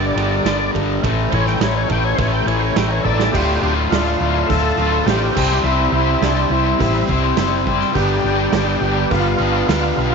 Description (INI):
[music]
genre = classic rock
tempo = 104 BPM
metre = 4/4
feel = straight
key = D dorian from 3.3 s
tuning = A4 = 439 Hz
[part]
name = overdriven tonewheel organ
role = melody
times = 0.0-10.1 s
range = D4 to G5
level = -22 LUFS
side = left 1 dB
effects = slow rotary speaker, chorus vibrato
[part]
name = tonewheel organ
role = sustained chords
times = 0.0-10.1 s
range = B3 to E5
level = -32 LUFS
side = equal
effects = none
[part]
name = cranked stack guitar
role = riff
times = 0.0-10.1 s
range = D2 to C5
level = -23 LUFS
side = right 14 dB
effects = overdrive
[part]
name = overdriven semi-hollow guitar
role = riff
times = 0.0-10.1 s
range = D2 to C5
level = -21 LUFS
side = left 16 dB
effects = harmonic tremolo
[part]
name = hollow-body short-scale fingered electric bass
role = bass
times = 0.0-10.1 s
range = D1 to D2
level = -21 LUFS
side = left 1 dB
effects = none
[part]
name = vintage drum kit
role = drums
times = 0.2-9.8 s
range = crash cymbal, hi-hat, kick drum, ride cymbal, snare drum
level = -24 LUFS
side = right 6 dB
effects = none
[part]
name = octave-fuzz lead guitar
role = second line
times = 3.1-10.1 s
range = G3 to F4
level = -27 LUFS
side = right 12 dB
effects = distortion
[sound]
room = light reverb, small room ambience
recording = 1960s-style stereo with parts hard left and right, nothing above 7.6 kHz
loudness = -15 LUFS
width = side -5 dB against mid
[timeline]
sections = 0.0-3.3 A section; 3.3-10.1 B section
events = tonewheel organ solo 0.0-3.3; drum fill 3.0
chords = 0.0 Gm; 1.0 A7; 3.3 Dm; 5.4 C; 8.0 G